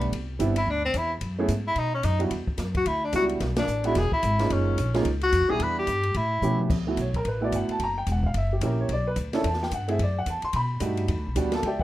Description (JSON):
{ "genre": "jazz, small-group swing and bop", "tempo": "219 BPM", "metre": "4/4", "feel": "swing 60% on 8ths", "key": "D major", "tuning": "A4 = 439 Hz", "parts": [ { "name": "clear tenor saxophone", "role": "melody", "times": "0.0-6.6 s", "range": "B3 to B4", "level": "-26 LUFS", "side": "left 1 dB", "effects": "plate reverb" }, { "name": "clear baby grand piano", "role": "accompaniment", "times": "0.0-11.8 s", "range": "G3 to C6", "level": "-28 LUFS", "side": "right 2 dB", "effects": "plate reverb" }, { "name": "upright bass", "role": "bass", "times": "0.0-11.8 s", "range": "E1 to B2", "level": "-27 LUFS", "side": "equal", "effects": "none" }, { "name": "open jazz drum kit", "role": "drums", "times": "0.0-11.8 s", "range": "crash cymbal, hi-hat, kick drum, ride cymbal, snare drum, toms", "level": "-32 LUFS", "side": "equal", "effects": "none" } ], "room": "moderate studio reverb, RT60 0.6 s", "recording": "rough home demo mix", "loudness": "-23 LUFS", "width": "side -15 dB against mid", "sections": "0.0-6.7 A section; 6.7-11.8 B section", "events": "band accent 3.5; drum fill 6.4", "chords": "0.1 Cmaj9; 1.2 F#m11; 1.8 B5; 2.3 Em9; 3.4 Bm7; 4.0 E; 4.5 F#maj13; 5.6 Em7; 6.1 A9; 6.7 D69; 7.8 F#7b9; 8.9 Bm11; 10.0 D9; 10.5 B7b13; 11.1 Em9", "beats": "| 0.11 0.39 0.66 0.94 | 1.21 1.49 1.76 2.04 | 2.31 2.58 2.86 3.13 | 3.41 3.68 3.95 4.23 | 4.50 4.78 5.05 5.32 | 5.60 5.87 6.15 6.42 | 6.69 6.97 7.24 7.52 | 7.79 8.07 8.34 8.62 | 8.89 9.16 9.44 9.71 | 9.99 10.26 10.54 10.81 | 11.08 11.36 11.63" }